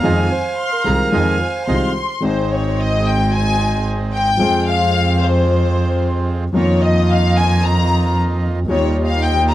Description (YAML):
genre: tango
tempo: 111 BPM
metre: 4/4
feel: rubato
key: Ab major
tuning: A4 = 444 Hz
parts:
  - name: bandoneon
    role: melody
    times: 0.0-1.9 s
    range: F5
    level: -21 LUFS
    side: right 2 dB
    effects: none
  - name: warm studio violin section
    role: second line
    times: 0.0-9.5 s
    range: C5 to C6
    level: -20 LUFS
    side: left 3 dB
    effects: none
  - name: warm concert grand piano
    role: accompaniment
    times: 0.0-9.5 s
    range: Ab1 to Ab4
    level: -21 LUFS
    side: left 2 dB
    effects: none
  - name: bandoneon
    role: stabs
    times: 0.0-9.5 s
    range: G3 to F4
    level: -27 LUFS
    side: right 5 dB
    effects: none
  - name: dark double bass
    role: bass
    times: 0.0-9.5 s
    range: Ab1 to F2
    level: -18 LUFS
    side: right 1 dB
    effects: none
  - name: dark clarinet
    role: second line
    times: 0.3-2.2 s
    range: Bb4 to C5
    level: -25 LUFS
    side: right 5 dB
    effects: none
room: small room reverb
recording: dry, close 1970s-style studio recording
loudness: -14 LUFS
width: side -14 dB against mid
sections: 0.0-2.2 A section; 2.2-9.5 B section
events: violin section solo 2.2-9.5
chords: 0.0 Fm7; 2.2 Ab; 4.4 Fm; 6.6 Bbsus4/F; 8.7 Ebadd9